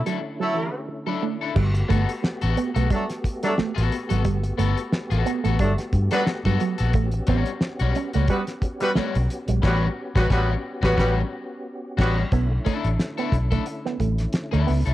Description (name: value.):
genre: funk.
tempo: 89 BPM.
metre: 4/4.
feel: swing 56% on 16ths.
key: unclear.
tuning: A4 = 440 Hz.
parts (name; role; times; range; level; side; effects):
percussive tonewheel organ; sustained chords; 0.0-14.9 s; D3 to G4; -34 LUFS; equal; chorus vibrato, fast rotary speaker, cassette tape.
electric guitar at the edge of break-up; accompaniment; 0.1-14.9 s; G3 to A4; -30 LUFS; left 8 dB; cassette tape.
electric guitar with an envelope filter; riff; 0.1-14.8 s; E3 to C#4; -27 LUFS; right 7 dB; cassette tape.
cloth-damped thuddy drum kit; drums; 0.1-14.9 s; crash cymbal, hi-hat, kick drum, snare drum; -25 LUFS; equal; cassette tape.
mellow horn section; second line; 0.4-12.2 s; F#3 to B4; -25 LUFS; equal; cassette tape.
vintage muted fingered electric bass; bass; 1.6-14.9 s; G1 to G2; -22 LUFS; equal; none.
room: studio ambience.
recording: home recording on cassette.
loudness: -21 LUFS.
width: side -15 dB against mid.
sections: 0.0-1.6 A section; 1.6-12.3 B section; 12.3-14.9 A section.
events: band accent 0.0-1.6, 9.6-12.3; break 0.2-1.6.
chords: 0.0 Bm11 (rootless); 1.6 Gmaj9; 6.9 A13; 12.3 Bm11.